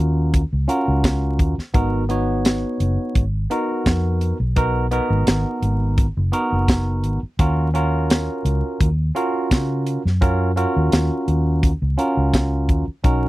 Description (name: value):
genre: straight-eighth soul blues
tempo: 85 BPM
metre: 4/4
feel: swing 54% on 16ths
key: Eb minor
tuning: A4 = 437 Hz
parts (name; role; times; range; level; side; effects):
- barky tine electric piano; accompaniment; 0.0-13.3 s; Cb4 to Db5; -22 LUFS; right 1 dB; phaser
- vintage muted fingered electric bass; bass; 0.0-13.3 s; Gb1 to Db3; -20 LUFS; equal; none
- tight funk drum kit; drums; 0.3-13.2 s; hi-hat, kick drum, snare drum, tambourine; -19 LUFS; equal; none
room: little or no reverb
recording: dry, close 1970s-style studio recording, vinyl crackle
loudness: -17 LUFS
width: side -18 dB against mid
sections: 0.0-13.3 A section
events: none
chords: 0.0 Ebm7; 1.7 Abm7; 7.4 Ebm7